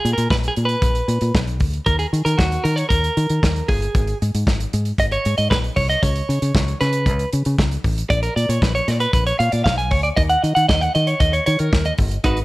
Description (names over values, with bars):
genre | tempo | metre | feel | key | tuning
disco | 116 BPM | 4/4 | straight | unclear | A4 = 440 Hz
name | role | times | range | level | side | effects
clean electric guitar | accompaniment | 0.0-12.4 s | D#4 to G#5 | -20 LUFS | right 1 dB | spring reverb
fingered electric bass | bass | 0.0-12.4 s | G1 to D#3 | -20 LUFS | equal | none
warm soul drum kit | drums | 0.1-12.4 s | hi-hat, kick drum, snare drum | -21 LUFS | equal | none
room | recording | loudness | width
studio ambience | none | -16 LUFS | side -20 dB against mid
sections
0.0-12.2 A section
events
clean electric guitar solo 0.0-12.2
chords
0.0 N.C.; 1.9 D#5; 3.9 G#sus4; 6.0 Aadd9 (rootless); 8.1 A#; 10.2 D#m7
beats
0.31 0.83 1.35 | 1.87 2.39 2.91 3.43 | 3.95 4.47 4.99 5.51 | 6.03 6.54 7.06 7.58 | 8.10 8.62 9.14 9.66 | 10.17 10.69 11.21 11.73 | 12.24